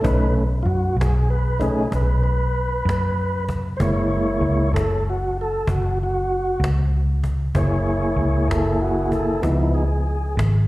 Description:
slow blues; 64 BPM (dotted quarters); 12/8; straight; F# mixolydian; A4 = 440 Hz
tonewheel organ; sustained chords; 0.0-10.4 s; E#3 to C#5; -22 LUFS; equal; slow rotary speaker
vintage muted fingered electric bass; bass; 0.0-10.7 s; F#1 to F#2; -20 LUFS; equal
cajon; drums; 0.0-10.5 s; -29 LUFS; equal
light reverb; live gig heard through the venue's PA, recital hall reverb; -18 LUFS; side -18 dB against mid
0.0-10.7 A section
tonewheel organ solo 0.0-10.7
0.0 B7; 3.8 F#7; 9.4 C#7
| 0.04 0.97 1.91 2.85 | 3.79 4.73 5.67 6.60 | 7.54 8.48 9.43 10.37

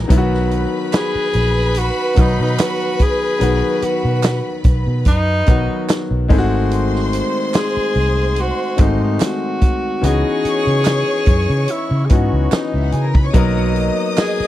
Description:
lush 1970s-style soul; 72 BPM; 4/4; swing 54% on 16ths; B major; A4 = 439 Hz
warm studio string section; second line; 0.0-14.5 s; D#4 to D#6; -25 LUFS; right 1 dB
clear grand piano; accompaniment; 0.0-14.5 s; D#3 to A#4; -21 LUFS; left 3 dB
vintage muted fingered electric bass; bass; 0.0-14.4 s; G#1 to C#3; -18 LUFS; equal
vintage drum kit; drums; 0.1-14.4 s; hi-hat, kick drum, snare drum; -15 LUFS; equal
group handclap; percussion; 0.9-14.4 s; -31 LUFS; right 16 dB
warm tenor saxophone; melody; 1.0-14.5 s; D#4 to G#4; -21 LUFS; left 1 dB
clean electric guitar; riff; 13.3-14.4 s; F#4 to D#5; -29 LUFS; right 8 dB
studio ambience; dry, close 1970s-style studio recording; -14 LUFS; side -14 dB against mid
0.1-14.5 A section
0.1 B; 6.3 G#7b9; 10.0 C#m11; 13.3 Bmaj7
| 0.10 0.93 1.75 2.58 | 3.41 4.24 5.06 5.89 | 6.72 7.54 8.37 9.20 | 10.03 10.86 11.69 12.52 | 13.34 14.17

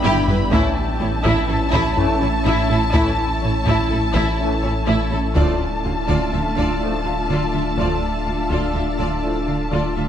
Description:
cinematic, hybrid orchestral and electronic film score; 124 BPM; 5/4; straight; D dorian; A4 = 441 Hz
warm symphonic violin section; melody; 0.0-10.0 s; A5 to B5; -26 LUFS; left 1 dB
warm symphonic violin section; second line; 0.0-10.0 s; E4 to F5; -28 LUFS; left 2 dB
warm symphonic viola section; accompaniment; 0.0-10.0 s; E4 to F4; -26 LUFS; left 1 dB
clear trombone section; sustained chords; 0.0-9.4 s; D3 to A3; -32 LUFS; right 3 dB
dark French horn section; sustained chords; 0.0-9.4 s; B3 to E4; -30 LUFS; left 5 dB
shimmering ambient pad; sustained chords; 0.0-10.1 s; A3 to E5; -25 LUFS; left 1 dB; chorus, built-in reverb
rich symphonic cello section; bass; 0.0-10.0 s; G2 to D3; -26 LUFS; right 3 dB
saturated sub bass; bass; 0.0-10.1 s; D1 to A1; -26 LUFS; equal
warm symphonic double bass section; bass; 0.0-10.0 s; G1 to D2; -26 LUFS; right 3 dB
taiko ensemble; drums; 0.0-9.4 s; -24 LUFS; equal
moderate scoring stage reverb, RT60 1.8 s; -17 LUFS; side -9 dB against mid
0.0-10.1 A section
drum fill 0.0-0.5
0.0 G6; 0.5 A; 5.4 Dmadd9
0.04 | 0.52 1.00 1.49 1.97 2.45 | 2.94 3.42 3.91 4.39 4.87 | 5.36 5.84 6.33 6.81 7.29 | 7.78 8.26 8.74 9.23 9.71

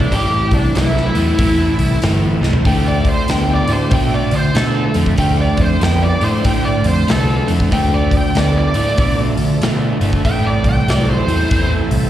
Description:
blues rock power trio and southern rock; 95 BPM; 4/4; swing 62% on 8ths; A4 = 435 Hz
bluesy overdriven lead guitar; melody; 0.0-11.7 s; D4 to G5; -20 LUFS; right 1 dB; wah, distortion, slapback echo
overdriven tonewheel organ; sustained chords; 0.0-12.1 s; F3 to Bb4; -29 LUFS; right 2 dB
crunchy overdriven guitar; riff; 0.0-12.1 s; A2 to B3; -19 LUFS; equal; slapback echo
vintage muted picked electric bass; bass; 0.0-12.1 s; G1 to D3; -17 LUFS; equal
big rock drum kit; drums; 0.0-12.0 s; hi-hat, kick drum, snare drum, toms; -20 LUFS; equal
light reverb; live gig heard through the venue's PA, recital hall reverb; -13 LUFS; side -12 dB against mid
0.0-12.1 A section
lead electric guitar solo 0.0-12.1; drum fill 2.3-2.6
0.0 Am; 2.6 Dm; 10.2 Am
| 0.12 0.75 1.38 2.02 | 2.65 3.28 3.91 4.55 | 5.18 5.81 6.45 7.08 | 7.71 8.35 8.98 9.61 | 10.25 10.88 11.51

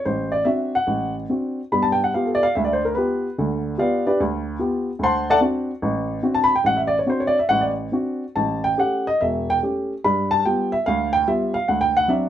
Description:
solo jazz; 146 BPM; 4/4; swing 67% on 8ths, rubato; D mixolydian; A4 = 440 Hz
dark upright piano; solo; 0.0-12.3 s; E1 to C6; -19 LUFS; equal
light reverb; minimal, uncompressed stereo recording; -19 LUFS; side -10 dB against mid
0.0-12.3 A section
upright piano solo 0.0-12.3
0.0 D7; 1.7 G7; 5.0 D7; 8.4 A7; 10.0 G7; 11.7 D7
| 0.05 0.45 0.87 1.29 | 1.72 2.14 2.56 2.98 | 3.39 3.79 4.21 4.61 | 5.02 5.43 5.83 6.24 | 6.65 7.07 7.49 7.92 | 8.35 8.78 9.20 9.62 | 10.04 10.46 10.87 11.28 | 11.68 12.09

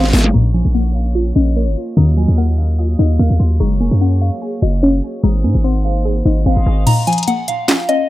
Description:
hip hop, trap; 147 BPM; 4/4; half-time; Bb minor; A4 = 440 Hz
soft synth bell; melody; 0.0-8.1 s; Db5 to Bb5; -23 LUFS; left 1 dB; chorus, phaser, low-pass filter, dub echo
delicate synth tine bell; second line; 0.0-6.8 s; C6 to F6; -42 LUFS; right 2 dB; chorus, dub echo
warbly dusty pluck; accompaniment; 0.0-8.1 s; Bb2 to Ab4; -18 LUFS; left 2 dB; chorus, low-pass filter, dub echo
warm chamber string section; sustained chords; 0.0-6.9 s; Gb3 to Eb5; -27 LUFS; right 1 dB
hard-hitting 808-style bass; bass; 0.0-6.9 s; F1 to Ab2; -14 LUFS; equal
trap drum kit; drums; 0.0-0.4, 6.9-8.0 s; crash cymbal, handclaps, hi-hat, snare drum; -18 LUFS; equal; dub echo
little or no reverb; echo-heavy mix, low-pass filter; -12 LUFS; side -16 dB against mid
0.3-6.9 A section; 6.9-8.1 B section
drum fill 0.0-0.3; filter sweep 0.3-6.9; kick muted 6.9-8.1
0.3 Bbm; 2.0 Ebmadd9; 3.6 Gbadd9; 5.2 Abadd9; 6.9 Bbm
| 0.34 0.74 1.15 1.56 | 1.97 2.38 2.79 3.19 | 3.60 4.01 4.42 4.83 | 5.24 5.64 6.05 6.46 | 6.87 7.28 7.68

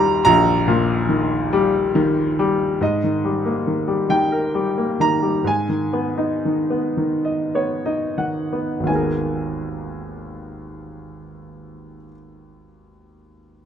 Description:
classical, lyrical solo piano; 26-48 BPM (dotted quarters); 6/8; rubato; G# minor; A4 = 439 Hz
bright grand piano; solo; 0.0-13.7 s; G#1 to C6; -18 LUFS; equal
light reverb; close, detailed microphones, lossy compression artefacts; -18 LUFS; side -8 dB against mid
0.0-2.8 A section; 2.8-8.9 B section; 8.9-13.2 C section
slowing down 2.8-8.9; grand piano fill 7.0-8.9
0.0 Eb; 2.8 D#/G#; 5.4 G#m; 8.9 G#madd9
| 0.25 1.51 | 2.81 4.09 | 5.45 6.97 | 8.88 11.05

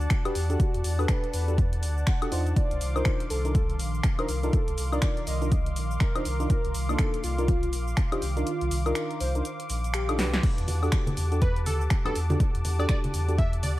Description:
deep house; 122 BPM; 4/4; swing 60% on 16ths; A4 = 439 Hz
warm analog pad; sustained chords; 0.0-13.8 s; D5 to D6; -39 LUFS; left 1 dB; chorus, sidechain pumping
warm sub bass; bass; 0.0-13.8 s; Bb1 to E2; -28 LUFS; equal; sidechain pumping
punchy analog drum machine; drums; 0.0-13.7 s; crash cymbal, finger snaps, hi-hat, shaker, snare drum, woodblock; -34 LUFS; left 1 dB; overdrive
warbly tape-like pad; texture; 0.0-13.8 s; Eb3 to C6; -39 LUFS; right 1 dB; chorus, built-in reverb, sidechain pumping
electronic kick drum; drums; 0.1-13.5 s; -25 LUFS; equal; overdrive
warm velvety synth lead; melody; 0.3-10.4 s; F4 to F#5; -35 LUFS; left 1 dB; chorus, tape echo
mellow FM electric piano; stabs; 0.3-13.4 s; Bb3 to C5; -34 LUFS; right 1 dB; chorus, tape echo
congas; percussion; 10.7-13.8 s; -33 LUFS; equal; sidechain pumping on perc
plucky unison lead; melody; 11.4-13.7 s; A4 to E5; -34 LUFS; right 1 dB; tape echo
digital ambience; vinyl crackle; -24 LUFS; side -16 dB against mid
0.0-13.8 A section
kick drops out 8.5-10.4; drum fill 10.2
0.0 Em11; 2.6 Cm11; 10.4 Em11
0.11 | 0.60 1.09 1.58 2.07 | 2.56 3.06 3.55 4.04 | 4.53 5.02 5.52 6.01 | 6.50 6.99 7.48 7.97 | 8.47 8.96 9.45 9.94 | 10.43 10.93 11.42 11.91 | 12.40 12.89 13.38

